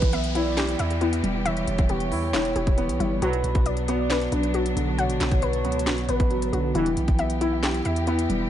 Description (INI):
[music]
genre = hip hop, trap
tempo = 136 BPM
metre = 4/4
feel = half-time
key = E dorian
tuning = A4 = 440 Hz
[part]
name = gliding portamento lead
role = second line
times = 0.0-6.7 s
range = B4 to D5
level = -32 LUFS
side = right 5 dB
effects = chorus, tape echo
[part]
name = dark concert grand piano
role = accompaniment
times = 0.0-8.5 s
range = B2 to E4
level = -28 LUFS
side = right 2 dB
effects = none
[part]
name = warm symphonic string section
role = sustained chords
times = 0.0-8.5 s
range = E3 to G4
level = -34 LUFS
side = left 2 dB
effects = none
[part]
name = warbly dusty pluck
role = arpeggios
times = 0.0-8.5 s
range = D4 to F#5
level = -29 LUFS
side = left 6 dB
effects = chorus, tape echo
[part]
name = hard-hitting 808-style bass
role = bass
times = 0.0-8.5 s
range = E1 to E2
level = -28 LUFS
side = equal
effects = none
[part]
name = trap drum kit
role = drums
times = 0.0-8.4 s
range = handclaps, hi-hat, kick drum, snare drum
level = -26 LUFS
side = equal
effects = none
[part]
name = downlifter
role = sound effects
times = 0.0-3.2 s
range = none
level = -37 LUFS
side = equal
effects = none
[part]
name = warm brass ensemble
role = stabs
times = 3.2-3.5, 6.8-7.1 s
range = G2 to F#3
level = -32 LUFS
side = right 4 dB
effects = none
[sound]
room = little or no reverb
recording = dark, warm production, nothing above 10.8 kHz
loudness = -21 LUFS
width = side -11 dB against mid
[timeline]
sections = 0.0-8.5 A section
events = none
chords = 0.0 Em; 3.2 Bm; 6.8 Em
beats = 0.13 0.57 1.01 | 1.46 1.90 2.34 2.78 | 3.22 3.66 4.10 4.54 | 4.99 5.43 5.87 6.31 | 6.75 7.19 7.63 8.07